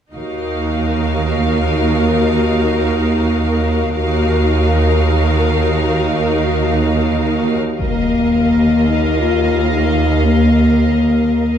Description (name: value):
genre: cinematic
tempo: free time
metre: none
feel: none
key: Eb minor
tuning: A4 = 441 Hz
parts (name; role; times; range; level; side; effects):
- rich symphonic violin section; second line; 0.1-11.6 s; Bb4 to F5; -21 LUFS; left 2 dB; none
- clear symphonic viola section; accompaniment; 0.1-11.6 s; Eb4 to Bb4; -21 LUFS; equal; none
- warm symphonic cello section; bass; 0.1-11.6 s; Eb2; -19 LUFS; right 2 dB; none
- rich symphonic double bass section; bass; 0.2-11.6 s; Eb2; -19 LUFS; right 3 dB; none
- warm symphonic violin section; melody; 7.8-11.6 s; F5; -26 LUFS; left 3 dB; none
- mellow French horn section; sustained chords; 7.8-11.6 s; Bb3 to F4; -14 LUFS; left 3 dB; none
- impact; sound effects; 7.8-9.7 s; none; -26 LUFS; equal; none
room: wet recital hall reverb, RT60 1.6 s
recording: recorded in a church or concert hall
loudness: -13 LUFS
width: side -9 dB against mid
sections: 0.1-7.8 A section; 7.8-11.6 B section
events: impact 7.8-9.7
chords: 0.1 Ebmadd9; 7.8 Ebsus2